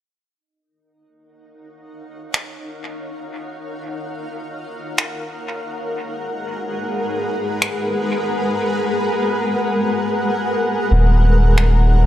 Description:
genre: ambient dub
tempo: free time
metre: none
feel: none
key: Eb minor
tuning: A4 = 438 Hz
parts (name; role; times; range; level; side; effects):
- granular cloud pad; sustained chords; 1.6-12.1 s; Ab3 to Gb5; -21 LUFS; left 1 dB; built-in reverb
- finger snaps; drums; 2.3-11.7 s; none; -22 LUFS; equal; dub echo
- soft dub sub bass; bass; 10.9-12.1 s; Eb1; -12 LUFS; equal; none
room: light reverb, small room reverb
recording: none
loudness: -18 LUFS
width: side -13 dB against mid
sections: 0.4-10.9 A section; 10.9-12.1 B section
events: fade-in on ambient pad 0.4-10.9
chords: 0.4 Ebm9; 5.6 Abm9; 10.9 Ebm9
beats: free time

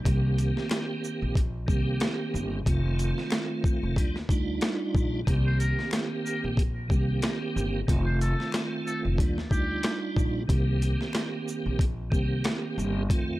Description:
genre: hip hop, boom-bap hip-hop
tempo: 92 BPM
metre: 4/4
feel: swing 56% on 16ths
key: C dorian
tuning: A4 = 441 Hz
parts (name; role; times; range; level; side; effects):
- tonewheel organ; accompaniment; 0.0-13.4 s; Eb3 to G4; -31 LUFS; right 2 dB; overdrive, chorus vibrato, slow rotary speaker, high-pass filter, low-pass filter
- upright bass; bass; 0.1-13.4 s; F1 to F2; -28 LUFS; equal; none
- boom bap sampler-style drum kit; drums; 0.1-13.3 s; hi-hat, kick drum, rim click, shaker, snare drum; -28 LUFS; equal; none
- finger snap; percussion; 0.7-12.6 s; none; -43 LUFS; left 6 dB; none
- trumpet with metal mute; melody; 5.5-10.0 s; G4 to C5; -37 LUFS; left 1 dB; high-pass filter, low-pass filter, tape echo
room: small room ambience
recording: dark, warm production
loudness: -25 LUFS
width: side -17 dB against mid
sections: 0.0-13.4 A section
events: none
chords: 0.1 Cm7; 2.7 F7; 4.0 Ebmaj9; 5.3 Cm7; 7.9 F7; 9.2 Ebmaj9; 10.5 Cm7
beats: | 0.06 0.71 1.36 2.01 | 2.66 3.32 3.97 4.62 | 5.27 5.92 6.58 7.23 | 7.88 8.53 9.19 9.84 | 10.49 11.14 11.79 12.45 | 13.10

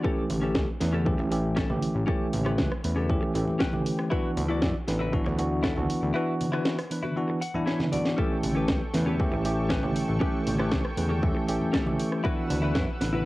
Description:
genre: nu-disco, nu disco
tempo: 118 BPM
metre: 4/4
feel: straight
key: D major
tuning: A4 = 441 Hz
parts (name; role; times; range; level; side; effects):
- bell-like tine electric piano; accompaniment; 0.0-13.2 s; E3 to B4; -28 LUFS; equal; auto-pan, sidechain pumping, cassette tape, tape echo
- direct-recorded clean electric guitar; riff; 0.0-13.3 s; C#4 to G5; -34 LUFS; left 2 dB; wide subtle chorus, cassette tape, tape echo
- electronic kick drum; drums; 0.0-12.9 s; none; -30 LUFS; equal; overdrive
- fat analog bass; bass; 0.3-13.3 s; A1 to F#2; -30 LUFS; equal; tube saturation
- house drum kit; drums; 0.3-13.1 s; hi-hat, rim click, snare drum; -32 LUFS; equal; overdrive
- congas; percussion; 0.3-13.2 s; none; -35 LUFS; right 1 dB; none
- lush unison pad; sustained chords; 8.2-13.3 s; A4 to E6; -37 LUFS; equal; chorus, sidechain pumping, cassette tape
room: light reverb, digital ambience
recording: home recording on cassette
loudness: -24 LUFS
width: side -18 dB against mid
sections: 0.0-13.3 A section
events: clean electric guitar fill 3.4-4.1, 7.2-8.2; kick drops out 6.1-8.2; drum fill 7.7-8.2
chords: 0.0 A7; 4.1 D69; 8.2 A7; 12.2 D69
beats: | 0.05 0.56 1.06 1.57 | 2.08 2.59 3.10 3.60 | 4.11 4.62 5.13 5.64 | 6.15 6.66 7.17 7.67 | 8.18 8.69 9.20 9.71 | 10.22 10.72 11.23 11.74 | 12.25 12.76

